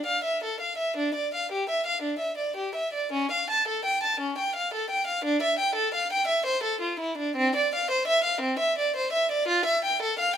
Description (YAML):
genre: classical, baroque-style suite movement for unaccompanied violin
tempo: 57 BPM (dotted quarters)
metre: 6/8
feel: rubato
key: D minor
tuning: A4 = 440 Hz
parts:
  - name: rich violin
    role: solo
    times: 0.0-10.4 s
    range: C4 to A5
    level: -24 LUFS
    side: equal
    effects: none
room: moderate stone room reverb, RT60 1.4 s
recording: minimal, uncompressed stereo recording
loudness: -24 LUFS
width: side -9 dB against mid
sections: 0.0-10.4 A section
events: none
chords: none